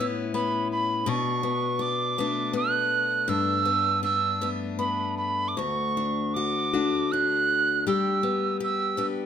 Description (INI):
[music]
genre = celtic folk, Celtic slow air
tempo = 81 BPM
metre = 3/4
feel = rubato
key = unclear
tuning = A4 = 440 Hz
[part]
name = mellow tin whistle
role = melody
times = 0.0-9.1 s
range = B5 to F#6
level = -25 LUFS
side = right 4 dB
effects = none
[part]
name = picked steel-string acoustic guitar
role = accompaniment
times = 0.0-9.3 s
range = D2 to G4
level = -27 LUFS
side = left 5 dB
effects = none
[sound]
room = moderate recital hall reverb, RT60 1.3 s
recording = close, detailed microphones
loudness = -23 LUFS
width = side -8 dB against mid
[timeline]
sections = 0.0-9.3 A section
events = none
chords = 0.0 Aadd9; 1.1 Bm7; 3.3 Gadd9; 5.6 D; 7.9 G